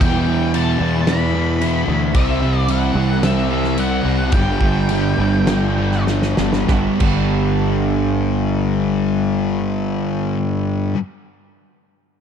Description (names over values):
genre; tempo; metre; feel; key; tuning
rock, shoegaze and dream pop; 95-112 BPM; 4/4; straight; G major; A4 = 440 Hz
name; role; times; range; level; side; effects
octave-fuzz lead guitar; melody; 0.0-6.0 s; E5 to B5; -26 LUFS; equal; distortion, tape echo
overdriven semi-hollow guitar; riff; 0.0-11.0 s; E2 to C4; -23 LUFS; equal; none
thick fuzz guitar; riff; 0.0-11.0 s; E2 to C4; -22 LUFS; left 8 dB; distortion, lush chorus
twelve-string electric guitar; riff; 0.0-11.0 s; E2 to F#4; -25 LUFS; right 16 dB; reverse reverb
fuzz fingered electric bass; bass; 0.0-10.9 s; G1 to E2; -20 LUFS; right 1 dB; overdrive
loose indie drum kit; drums; 0.0-7.2 s; crash cymbal, kick drum, snare drum; -22 LUFS; equal; none
room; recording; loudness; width
small room ambience; dark, warm production; -15 LUFS; side -8 dB against mid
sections
0.0-6.7 A section; 6.7-11.7 B section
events
slowing down 2.1-6.7; drum fill 6.1-6.7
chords
0.0 Em7; 2.1 C; 4.3 Gmaj7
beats
| 0.01 0.54 1.08 1.61 | 2.15 2.68 3.22 3.77 | 4.33 4.89 5.48 6.08 | 6.69 7.32 7.95 8.58 | 9.21 9.84 10.46